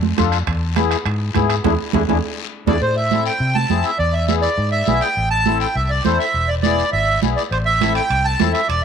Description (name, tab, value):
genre	latin, cumbia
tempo	204 BPM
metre	4/4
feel	straight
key	A harmonic minor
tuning	A4 = 440 Hz
part	vintage muted fingered electric bass	bass	0.0-8.8 s	E1 to C3	-21 LUFS	left 1 dB	none
part	congas	percussion	0.0-8.5 s	none	-22 LUFS	right 12 dB	none
part	accordion	accompaniment	0.2-8.6 s	B3 to A4	-24 LUFS	left 11 dB	light tremolo tuning
part	bombo	percussion	0.2-2.7 s	none	-26 LUFS	right 3 dB	none
part	guiro	percussion	0.2-8.8 s	none	-31 LUFS	left 16 dB	none
part	timbales	percussion	0.2-2.7, 7.5-8.8 s	none	-28 LUFS	right 11 dB	none
part	accordion	melody	2.7-8.8 s	C5 to A5	-18 LUFS	right 2 dB	none
room	moderate spring reverb, RT60 2.0 s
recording	1960s-style stereo with parts hard left and right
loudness	-16 LUFS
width	side -7 dB against mid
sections	0.0-2.8 A section; 2.8-8.8 B section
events	band accent 1.6-2.8; drum fill 2.4-2.8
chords	0.5 E7; 2.8 Am; 4.0 E7; 5.2 Am; 6.3 E7; 7.5 Am